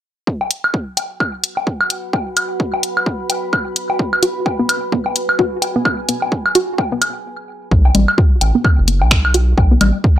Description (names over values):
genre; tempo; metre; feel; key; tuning
minimal techno; 129 BPM; 4/4; swing 59% on 16ths; unclear; A4 = 441 Hz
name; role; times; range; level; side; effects
electronic kick drum; drums; 0.3-10.2 s; none; -16 LUFS; equal; overdrive, high-pass filter on kick
deep dark ambient pad; texture; 1.5-10.2 s; F#4 to B5; -26 LUFS; right 2 dB; chorus, built-in reverb, sidechain pumping
woodblock and congas; percussion; 0.4-9.9 s; none; -18 LUFS; left 1 dB; tape echo
house drum kit; drums; 0.5-9.9 s; finger snaps, hi-hat; -18 LUFS; left 2 dB; overdrive
hollow square pluck; riff; 4.2-10.1 s; B3 to F#4; -19 LUFS; right 1 dB; chorus, sidechain pumping, analog delay
rubbery square bass; bass; 7.7-9.9 s; F#1 to B1; -15 LUFS; equal; sidechain pumping
room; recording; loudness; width
light reverb, digital ambience; dry, gritty hardware recording; -14 LUFS; side -12 dB against mid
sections
0.3-7.7 A section; 7.7-10.2 B section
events
fade-in on ambient pad 0.3-7.7; stop 7.2-7.7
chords
0.3 B5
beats
| 0.27 0.74 1.20 1.67 | 2.13 2.60 3.06 3.53 | 3.99 4.46 4.92 5.39 | 5.86 6.32 6.79 7.25 | 7.71 8.18 8.65 9.11 | 9.58 10.04